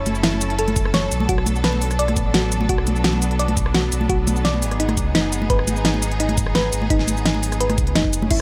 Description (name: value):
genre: liquid drum and bass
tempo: 171 BPM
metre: 4/4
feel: straight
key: unclear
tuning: A4 = 440 Hz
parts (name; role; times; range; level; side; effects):
- rich studio string section; sustained chords; 0.0-8.4 s; F#3 to A4; -29 LUFS; equal; sidechain pumping
- thumb-piano-like synth pluck; arpeggios; 0.0-8.4 s; D#4 to D5; -27 LUFS; equal; chorus, dub echo
- sub bass with octave; bass; 0.0-8.4 s; F#1 to C#2; -26 LUFS; equal; none
- pop drum kit; drums; 0.1-8.4 s; crash cymbal, hi-hat, rim click, shaker, snare drum; -25 LUFS; equal; none
- congas; percussion; 0.1-8.3 s; none; -30 LUFS; equal; none
- electronic kick drum; drums; 0.8-8.4 s; none; -25 LUFS; equal; none
room: light reverb, digital ambience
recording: none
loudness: -20 LUFS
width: mono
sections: 0.0-8.4 A section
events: none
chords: 0.0 F#m7; 1.1 Bm7; 4.6 G#m7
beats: 0.24 0.59 0.94 | 1.29 1.64 1.99 2.34 | 2.69 3.04 3.40 3.75 | 4.10 4.45 4.80 5.15 | 5.50 5.85 6.20 6.55 | 6.90 7.25 7.61 7.96 | 8.31